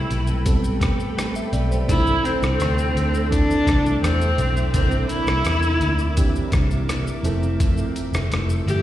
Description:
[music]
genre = indie pop, bedroom pop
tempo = 84 BPM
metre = 4/4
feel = straight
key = C major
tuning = A4 = 440 Hz
[part]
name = rich viola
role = melody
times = 0.0-8.8 s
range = C4 to G4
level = -22 LUFS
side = left 1 dB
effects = lush chorus, slapback echo
[part]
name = clean electric guitar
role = accompaniment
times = 0.0-8.8 s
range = C3 to B4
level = -30 LUFS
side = left 4 dB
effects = wide subtle chorus, warbly pitch drift, slapback echo
[part]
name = mellow reed electric piano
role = accompaniment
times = 0.0-8.8 s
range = E3 to G5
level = -28 LUFS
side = right 5 dB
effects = fast tremolo, cassette tape
[part]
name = granular cloud pad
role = sustained chords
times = 0.0-8.8 s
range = A4 to E6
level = -33 LUFS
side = right 1 dB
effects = built-in reverb
[part]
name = vintage muted picked electric bass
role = bass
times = 0.0-8.8 s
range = F1 to E2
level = -22 LUFS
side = equal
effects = none
[part]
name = boom bap sampler-style drum kit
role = drums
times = 0.1-8.8 s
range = hi-hat, kick drum, rim click, shaker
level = -23 LUFS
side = equal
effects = none
[sound]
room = digital ambience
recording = live gig heard through the venue's PA, recital hall reverb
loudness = -18 LUFS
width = side -13 dB against mid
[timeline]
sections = 0.0-8.8 A section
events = none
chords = 0.0 Am9; 1.9 C69; 4.7 C9; 7.2 Fmaj7

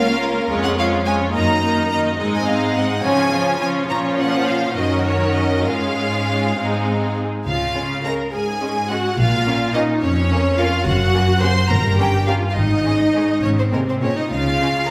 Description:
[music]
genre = quick classical-period movement for string orchestra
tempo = 70 BPM (dotted quarters)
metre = 6/8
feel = rubato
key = Db major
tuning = A4 = 440 Hz
[part]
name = clear symphonic violin section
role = melody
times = 0.0-14.9 s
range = Bb4 to C6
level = -25 LUFS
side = equal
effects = none
[part]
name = clear symphonic violin section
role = second line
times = 0.0-14.7 s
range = Ab3 to Eb5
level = -28 LUFS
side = equal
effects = none
[part]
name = rich symphonic viola section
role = accompaniment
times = 0.0-14.9 s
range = Eb3 to C5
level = -23 LUFS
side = equal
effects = none
[part]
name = clear symphonic cello section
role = bass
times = 0.0-14.9 s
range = Db2 to Db3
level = -24 LUFS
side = equal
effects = none
[part]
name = warm symphonic double bass section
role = bass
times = 7.5-14.8 s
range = Gb1 to Db2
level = -26 LUFS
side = equal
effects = none
[sound]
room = wet scoring stage reverb, RT60 1.4 s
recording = recorded in a church or concert hall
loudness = -19 LUFS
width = mono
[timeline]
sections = 0.0-7.5 A section; 7.5-14.9 B section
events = none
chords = 0.0 Bbm/Db; 0.5 Db/F; 1.3 Ebm/Gb; 2.2 Ab; 3.0 Db; 3.9 Bbm; 4.8 Ebm7/Gb; 5.7 Db/Ab; 6.6 Ab; 7.5 Db; 9.2 Bbm; 10.9 N.C.; 11.7 Gm7; 12.6 Ab5; 13.4 Ab; 14.3 Db

